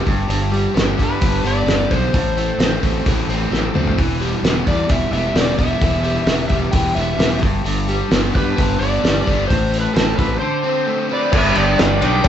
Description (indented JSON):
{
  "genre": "classic rock",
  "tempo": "130 BPM",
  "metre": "4/4",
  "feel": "straight",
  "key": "unclear",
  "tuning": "A4 = 440 Hz",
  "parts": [
    { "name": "overdriven electric guitar", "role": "riff", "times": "0.0-12.3 s", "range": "G2 to C4", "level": "-21 LUFS", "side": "left 1 dB", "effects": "none" },
    { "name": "fuzz fingered electric bass", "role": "bass", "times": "0.1-12.3 s", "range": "E1 to G2", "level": "-22 LUFS", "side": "equal", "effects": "overdrive" },
    { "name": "cloth-damped thuddy drum kit", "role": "drums", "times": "0.1-12.3 s", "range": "crash cymbal, hi-hat, kick drum, ride cymbal, snare drum, toms", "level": "-19 LUFS", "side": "equal", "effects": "none" },
    { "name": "overdriven slide guitar", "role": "melody", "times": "1.0-12.3 s", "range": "A4 to G5", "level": "-22 LUFS", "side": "left 1 dB", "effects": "none" },
    { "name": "octave-fuzz lead guitar", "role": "second line", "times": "11.1-12.3 s", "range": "G4 to D5", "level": "-24 LUFS", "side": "right 5 dB", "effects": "distortion" },
    { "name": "bright tonewheel organ", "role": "sustained chords", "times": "11.3-12.3 s", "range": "B3 to D5", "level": "-31 LUFS", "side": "right 1 dB", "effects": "none" },
    { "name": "cowbell", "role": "percussion", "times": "11.3-12.3 s", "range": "none", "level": "-27 LUFS", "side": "left 6 dB", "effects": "none" }
  ],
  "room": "light reverb",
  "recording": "band playing live in one room, nothing above 8.0 kHz",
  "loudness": "-15 LUFS",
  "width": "side -10 dB against mid",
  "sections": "0.0-11.3 A section",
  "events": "drum fill 3.5-4.0",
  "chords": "0.1 G; 2.1 Am; 4.0 Em; 7.4 G; 9.5 Am; 10.4 D5; 11.3 G",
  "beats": "| 0.29 0.75 1.21 1.67 | 2.13 2.59 3.05 3.51 | 3.97 4.43 4.89 5.35 | 5.81 6.27 6.73 7.19 | 7.65 8.11 8.57 9.03 | 9.49 9.95 10.41 10.87 | 11.33 11.79 12.25"
}